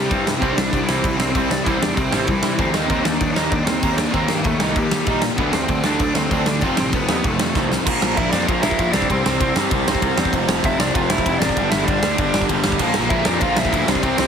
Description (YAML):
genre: punk rock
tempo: 194 BPM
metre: 4/4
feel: straight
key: unclear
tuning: A4 = 441 Hz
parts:
  - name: smooth overdriven lead guitar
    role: melody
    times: 0.0-14.3 s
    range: E3 to F5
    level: -24 LUFS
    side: equal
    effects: none
  - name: crunchy overdriven guitar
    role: riff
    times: 0.0-7.9, 12.8-14.3 s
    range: F2 to F4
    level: -26 LUFS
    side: equal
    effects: none
  - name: overdriven electric guitar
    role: riff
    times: 0.0-14.3 s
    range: F2 to Eb4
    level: -25 LUFS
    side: right 12 dB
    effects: none
  - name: overdriven semi-hollow guitar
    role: riff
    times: 0.0-14.3 s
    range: F2 to Eb4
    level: -24 LUFS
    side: left 12 dB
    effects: none
  - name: fuzz picked electric bass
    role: bass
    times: 0.0-14.3 s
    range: F1 to Eb3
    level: -25 LUFS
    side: equal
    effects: overdrive
  - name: big rock drum kit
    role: drums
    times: 0.1-14.3 s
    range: crash cymbal, kick drum, ride cymbal, snare drum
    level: -21 LUFS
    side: equal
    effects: none
room: light reverb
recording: heavily compressed radio sound, multiband compression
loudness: -16 LUFS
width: side -7 dB against mid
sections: 0.0-7.9 A section; 7.9-14.3 B section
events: drum fill 7.6-7.9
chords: 0.0 C; 2.7 Eb; 5.4 D; 6.6 F7; 7.9 Bb; 8.9 C5; 10.3 F5; 11.6 G5; 12.8 Bb